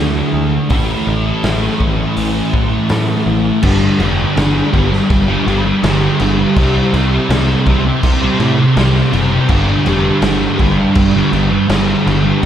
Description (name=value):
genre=rock, shoegaze and dream pop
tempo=82 BPM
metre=4/4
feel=straight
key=unclear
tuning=A4 = 436 Hz
part: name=fuzz guitar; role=riff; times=0.0-12.5 s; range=G2 to D4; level=-13 LUFS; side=equal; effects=distortion, ensemble chorus
part: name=picked electric bass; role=bass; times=0.0-12.3 s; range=F1 to A2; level=-18 LUFS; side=equal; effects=none
part: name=raw garage drum kit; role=drums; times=0.7-12.5 s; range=crash cymbal, hi-hat, kick drum, snare drum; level=-18 LUFS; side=equal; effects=none
room=moderate lush hall reverb, RT60 2.5 s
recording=dreamy mix soaked in reverb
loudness=-11 LUFS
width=side -10 dB against mid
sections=0.0-3.6 A section; 3.6-12.5 B section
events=none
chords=0.0 D5; 0.7 A5; 3.6 G5; 6.6 C5; 9.5 G5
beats=| 0.70 1.43 2.17 2.90 | 3.63 4.37 5.10 5.83 | 6.56 7.29 8.03 8.76 | 9.49 10.22 10.96 11.69 | 12.43